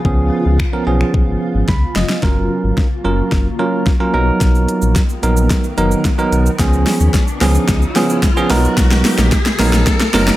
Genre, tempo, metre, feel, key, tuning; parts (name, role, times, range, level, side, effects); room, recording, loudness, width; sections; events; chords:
dance-pop; 110 BPM; 4/4; straight; F# major; A4 = 440 Hz
bell-like tine electric piano; accompaniment; 0.0-10.4 s; E#3 to B5; -17 LUFS; right 3 dB; sidechain pumping
granular cloud pad; sustained chords; 0.0-10.4 s; C#3 to A#4; -25 LUFS; left 1 dB; built-in reverb, sidechain pumping
smooth R&B drum kit; drums; 0.0-10.4 s; finger snaps, hi-hat, kick drum, shaker, snare drum; -16 LUFS; equal; overdrive
sub bass with octave; bass; 0.1-10.3 s; E#1 to D#2; -16 LUFS; left 1 dB; sidechain pumping
riser; sound effects; 5.0-10.4 s; -26 LUFS; left 2 dB
digital ambience; -12 LUFS; side -15 dB against mid
0.0-2.2 A section; 2.2-10.4 B section
tine electric piano fill 1.4-2.2, 10.1; drum fill 1.7-2.2, 2.2-10.4; build-up 2.2-10.4; riser 5.0-10.4
0.0 C#7; 2.2 F#maj7; 4.1 Bmaj7; 6.6 C#7; 8.5 Bmaj7